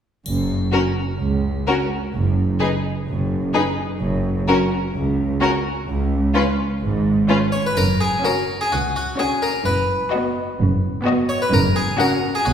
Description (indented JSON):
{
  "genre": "cinematic, playful, whimsical film cue",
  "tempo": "128 BPM",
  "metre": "4/4",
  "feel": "straight",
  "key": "F# major",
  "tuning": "A4 = 440 Hz",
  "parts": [
    { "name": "rich studio double bass section", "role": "bass", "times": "0.3-12.5 s", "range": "F#1 to C#2", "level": "-24 LUFS", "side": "right 2 dB", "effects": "none" },
    { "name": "warm studio cello section", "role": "bass", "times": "0.3-12.5 s", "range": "C#2 to B2", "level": "-23 LUFS", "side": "right 1 dB", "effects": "none" },
    { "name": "triangle", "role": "percussion", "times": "0.3-1.2, 7.8-8.7 s", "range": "none", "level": "-38 LUFS", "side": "left 4 dB", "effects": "none" },
    { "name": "rich studio violin section", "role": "melody", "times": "0.7-12.3 s", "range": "A#4 to F#5", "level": "-26 LUFS", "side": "left 4 dB", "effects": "none" },
    { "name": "clear studio violin section", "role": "second line", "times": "0.7-12.3 s", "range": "E#4 to G#4", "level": "-27 LUFS", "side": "left 4 dB", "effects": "none" },
    { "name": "rich studio viola section", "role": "accompaniment", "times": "0.7-12.3 s", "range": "B3 to D#4", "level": "-26 LUFS", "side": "equal", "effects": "none" },
    { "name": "harpsichord", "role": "melody", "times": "7.5-12.5 s", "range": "F#4 to C#5", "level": "-21 LUFS", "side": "left 2 dB", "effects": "none" }
  ],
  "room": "wet concert hall reverb, RT60 1.9 s",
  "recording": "recorded in a church or concert hall",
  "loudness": "-18 LUFS",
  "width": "side -8 dB against mid",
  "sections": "0.3-7.8 A section; 7.8-12.5 B section",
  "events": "none",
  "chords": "0.3 F#5; 2.1 N.C.; 4.0 F#5; 5.9 C#5; 7.8 F#5; 9.7 B/F#; 11.5 F#5"
}